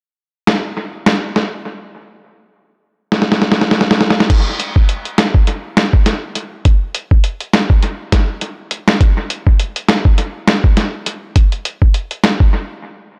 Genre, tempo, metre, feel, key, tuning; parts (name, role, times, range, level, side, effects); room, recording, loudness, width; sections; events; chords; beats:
dancehall; 102 BPM; 4/4; swing 56% on 16ths
lo-fi sampler-style drum kit; drums; 0.5-12.5 s; crash cymbal, finger snaps, hi-hat, kick drum, snare drum; -14 LUFS; equal; analog delay
light reverb; echo-heavy mix; -15 LUFS; mono
0.0-4.3 A section; 4.3-13.2 B section
drum fill 3.1-4.3; break 12.5-13.2
0.18 0.77 1.36 | 1.95 2.53 3.12 3.71 | 4.30 4.89 5.48 6.06 | 6.65 7.24 7.83 8.42 | 9.01 9.59 10.18 10.77 | 11.36 11.95